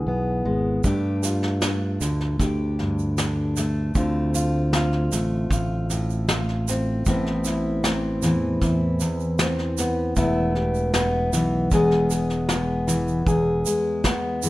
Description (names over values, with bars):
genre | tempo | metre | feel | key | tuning
acoustic folk duo or small band | 77 BPM | 4/4 | straight | unclear | A4 = 440 Hz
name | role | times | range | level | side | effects
fingerpicked steel-string acoustic guitar | accompaniment | 0.0-14.5 s | E2 to G#4 | -23 LUFS | left 1 dB | none
fingered electric bass | bass | 0.0-13.6 s | E1 to G2 | -25 LUFS | equal | none
soft brush drum kit | drums | 0.8-14.2 s | kick drum, snare drum | -26 LUFS | equal | none
egg shaker | percussion | 0.8-14.5 s | none | -34 LUFS | right 9 dB | none
room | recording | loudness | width
light reverb | none | -20 LUFS | side -17 dB against mid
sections
0.0-13.3 A section; 13.3-14.5 B section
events
none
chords
0.0 E; 0.8 Gsus2; 4.0 Dm7; 7.1 Amadd9; 10.2 Esus4; 11.7 E